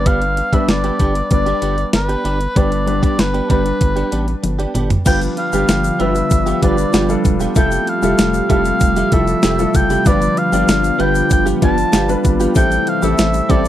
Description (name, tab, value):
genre	1980s-style pop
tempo	96 BPM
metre	4/4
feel	straight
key	unclear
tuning	A4 = 440 Hz
part	clear oboe	melody	0.0-13.7 s	B4 to A5	-20 LUFS	equal	none
part	clear baby grand piano	accompaniment	0.0-13.7 s	G3 to D5	-20 LUFS	left 2 dB	none
part	round analog bass	bass	0.0-13.7 s	E1 to A1	-21 LUFS	equal	none
part	direct-recorded clean electric guitar	riff	0.1-13.7 s	A3 to G4	-24 LUFS	right 4 dB	ensemble chorus
part	clean 12-bit digital drum machine	drums	0.1-13.7 s	crash cymbal, hi-hat, kick drum, snare drum, toms	-16 LUFS	equal	none
part	phased analog pad	sustained chords	5.1-13.7 s	C3 to G4	-21 LUFS	equal	phaser, chorus
part	egg shaker	percussion	5.1-13.7 s	none	-33 LUFS	left 14 dB	none
room	little or no reverb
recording	dry, close 1970s-style studio recording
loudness	-13 LUFS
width	side -12 dB against mid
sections	0.0-5.1 A section; 5.1-13.7 B section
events	drum fill 4.4-5.1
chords	0.0 G; 5.1 G7; 7.6 Fmaj9; 10.1 G7; 12.6 Am7